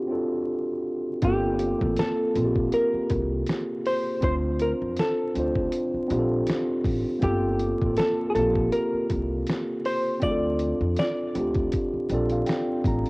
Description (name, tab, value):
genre	lo-fi hip hop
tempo	80 BPM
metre	4/4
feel	swing 56% on 16ths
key	G minor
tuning	A4 = 440 Hz
part	mellow tine electric piano	accompaniment	0.0-13.1 s	Bb3 to Bb5	-26 LUFS	equal	low-pass filter, cassette tape
part	hollow-body jazz guitar	melody	1.2-11.7 s	G4 to D5	-27 LUFS	equal	low-pass filter, cassette tape
part	upright bass	bass	1.2-13.0 s	G1 to F2	-29 LUFS	equal	none
part	dusty soul sampler-style drum kit	drums	1.2-13.1 s	hi-hat, kick drum, snare drum	-29 LUFS	equal	cassette tape
room	light reverb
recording	home recording on cassette, vinyl crackle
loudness	-23 LUFS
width	side -26 dB against mid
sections	0.0-1.2 A section; 1.2-13.1 B section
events	none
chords	0.0 Dm7; 1.2 Gm11; 4.2 Dm7; 7.2 Gm11; 10.2 Dm7